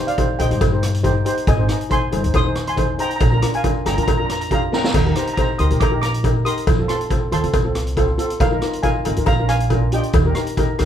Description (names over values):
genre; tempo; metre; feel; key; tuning
calypso; 138 BPM; 4/4; swing 54% on 16ths; Eb major; A4 = 440 Hz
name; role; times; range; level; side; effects
steel pan; melody; 0.0-10.9 s; Bb4 to Eb6; -24 LUFS; right 1 dB; plate reverb
steel pan; accompaniment; 0.0-10.9 s; C4 to Eb5; -23 LUFS; left 2 dB; none
street-band drum kit; drums; 0.1-10.9 s; crash cymbal, hi-hat, kick drum, rim click, snare drum; -21 LUFS; equal; none
cowbell; percussion; 0.2-10.9 s; none; -26 LUFS; left 1 dB; none
upright bass; bass; 0.4-10.9 s; G1 to G2; -21 LUFS; equal; none
room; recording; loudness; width
wet small room reverb, RT60 0.5 s; heard from further back in the room; -16 LUFS; side -9 dB against mid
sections
0.0-10.9 A section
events
drum fill 4.7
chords
0.0 Cm; 1.5 Ab; 3.2 Bb; 4.9 Ebmaj7; 6.7 F; 8.4 Bb7sus4; 9.3 Ebmaj7